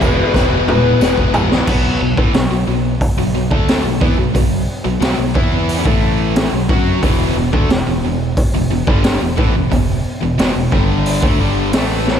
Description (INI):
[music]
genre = classic rock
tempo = 90 BPM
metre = 4/4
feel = straight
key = unclear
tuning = A4 = 440 Hz
[part]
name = smooth overdriven lead guitar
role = melody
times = 0.0-1.3 s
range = B4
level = -20 LUFS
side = left 5 dB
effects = none
[part]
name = tonewheel organ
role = sustained chords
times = 0.0-1.7 s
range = B3 to G#4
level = -29 LUFS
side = equal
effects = none
[part]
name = cranked stack guitar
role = riff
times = 0.0-12.2 s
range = E2 to G#4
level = -20 LUFS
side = left 10 dB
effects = overdrive, slapback echo
[part]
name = tight distorted guitar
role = riff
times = 0.0-12.2 s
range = E2 to F#4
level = -21 LUFS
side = right 10 dB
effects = distortion, slapback echo
[part]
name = growling fingered electric bass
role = bass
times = 0.0-12.2 s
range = E1 to F#2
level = -21 LUFS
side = equal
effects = overdrive
[part]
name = raw garage drum kit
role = drums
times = 0.0-12.2 s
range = crash cymbal, hi-hat, kick drum, snare drum, toms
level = -16 LUFS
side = equal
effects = none
[part]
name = tambourine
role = percussion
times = 0.0-1.5 s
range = none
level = -40 LUFS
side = left 8 dB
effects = none
[sound]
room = light reverb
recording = none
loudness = -13 LUFS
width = side -8 dB against mid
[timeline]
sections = 0.0-1.7 A section; 1.7-12.2 B section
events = drum fill 0.3-1.7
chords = 0.0 E; 1.7 B5; 5.9 A5; 6.5 B5; 7.0 E5